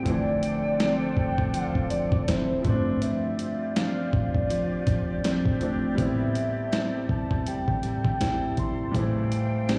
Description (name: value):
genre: contemporary R&B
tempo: 81 BPM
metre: 4/4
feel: swing 58% on 16ths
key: A minor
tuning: A4 = 440 Hz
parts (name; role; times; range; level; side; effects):
- clear baby grand piano; accompaniment; 0.0-9.8 s; E3 to E4; -33 LUFS; equal; none
- breathy small flute group; sustained chords; 0.0-9.8 s; D4 to G5; -40 LUFS; equal; none
- fingerpicked plugged-in steel-string acoustic guitar; arpeggios; 0.0-9.8 s; G2 to E4; -32 LUFS; equal; digital delay
- clean 808-style bass; bass; 0.0-9.7 s; D1 to G2; -35 LUFS; equal; none
- mellow horn-like synth lead; melody; 0.1-9.8 s; C5 to C6; -34 LUFS; equal; chorus
- dusty soul sampler-style drum kit; drums; 0.1-9.8 s; hi-hat, kick drum, snare drum; -30 LUFS; equal; none
room: light reverb, small room ambience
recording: played on a big sound system in a bare room, large studio reverb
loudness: -26 LUFS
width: mono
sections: 0.0-9.8 A section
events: none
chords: 0.1 Dm9; 2.6 G7sus4; 6.0 Am7; 8.9 Fmaj9/A